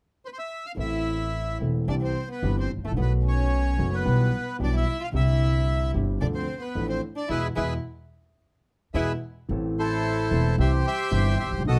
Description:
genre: tango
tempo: 111 BPM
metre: 4/4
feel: rubato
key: A minor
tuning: A4 = 439 Hz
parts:
  - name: bandoneon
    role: melody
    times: 0.3-11.8 s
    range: E4 to G5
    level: -33 LUFS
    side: equal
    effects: none
  - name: warm concert grand piano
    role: accompaniment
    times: 0.7-11.8 s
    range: E1 to A4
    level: -30 LUFS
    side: equal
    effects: none
  - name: warm violin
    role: second line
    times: 0.8-9.1 s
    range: A3 to F4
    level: -35 LUFS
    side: equal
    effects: none
  - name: upright bass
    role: bass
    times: 0.8-11.8 s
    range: E1 to E2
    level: -28 LUFS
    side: equal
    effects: none
room: light reverb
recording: close, detailed microphones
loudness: -26 LUFS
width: mono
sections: 0.8-9.5 A section; 9.5-11.8 B section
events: band accent 7.3-9.5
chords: 0.0 N.C.; 0.8 Am; 1.9 C; 3.0 B7; 4.1 Em/B; 5.1 Csus2; 6.2 Dm; 7.3 E; 9.5 Am; 10.6 C

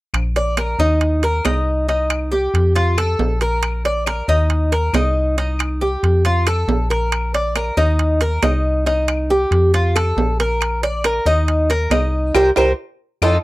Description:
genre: latin, Cuban son and guajira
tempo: 138 BPM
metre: 4/4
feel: straight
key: Bb major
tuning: A4 = 440 Hz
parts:
  - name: metallic FM bass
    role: bass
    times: 0.1-13.4 s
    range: Bb1 to F2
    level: -18 LUFS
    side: equal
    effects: none
  - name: claves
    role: percussion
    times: 0.1-13.3 s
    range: none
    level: -29 LUFS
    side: left 18 dB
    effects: none
  - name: timbales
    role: percussion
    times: 0.1-13.3 s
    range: none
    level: -23 LUFS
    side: right 6 dB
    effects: none
  - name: Cuban tres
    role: arpeggios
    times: 0.4-13.4 s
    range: Eb4 to D5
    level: -18 LUFS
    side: equal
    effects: none
room: little or no reverb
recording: dry, close 1970s-style studio recording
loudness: -15 LUFS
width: side -18 dB against mid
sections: 0.1-13.4 A section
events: band accent 12.4-13.4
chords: 0.1 Bb; 1.0 Eb5; 1.9 Cm; 2.8 F; 3.6 Bb; 4.5 Eb5; 5.4 Cm; 6.2 F; 7.1 Bb; 8.0 Eb5; 8.9 Cm; 9.7 F; 10.6 Bb; 11.5 Eb5; 12.4 C5

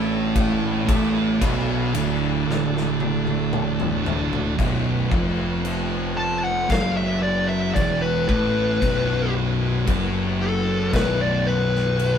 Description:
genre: stoner and doom metal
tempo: 57 BPM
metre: 4/4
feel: straight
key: unclear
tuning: A4 = 438 Hz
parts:
  - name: bright tonewheel organ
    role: sustained chords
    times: 0.0-12.2 s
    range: B3 to F#5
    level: -34 LUFS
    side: left 1 dB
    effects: slow rotary speaker, overdrive, chorus vibrato
  - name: thick fuzz guitar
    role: riff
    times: 0.0-12.2 s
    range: B1 to B3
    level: -26 LUFS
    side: left 6 dB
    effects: distortion
  - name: thick fuzz guitar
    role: riff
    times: 0.0-12.2 s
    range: B1 to B3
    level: -24 LUFS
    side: right 7 dB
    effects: distortion
  - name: fuzz picked electric bass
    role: bass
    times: 0.0-12.2 s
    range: B0 to B1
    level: -28 LUFS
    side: left 1 dB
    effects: overdrive
  - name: big rock drum kit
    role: drums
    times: 0.4-12.2 s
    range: crash cymbal, kick drum, ride cymbal, snare drum, toms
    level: -27 LUFS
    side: left 1 dB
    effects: none
  - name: fuzz lead guitar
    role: melody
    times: 6.2-12.2 s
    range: A4 to A5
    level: -24 LUFS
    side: left 3 dB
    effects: distortion
room: moderate stone room reverb, RT60 1.2 s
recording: band playing live in one room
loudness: -19 LUFS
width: side -8 dB against mid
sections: 0.0-4.6 A section; 4.6-12.2 B section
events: drum fill 2.5-4.6; lead electric guitar solo 4.6-12.2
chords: 0.0 D5; 4.6 B5

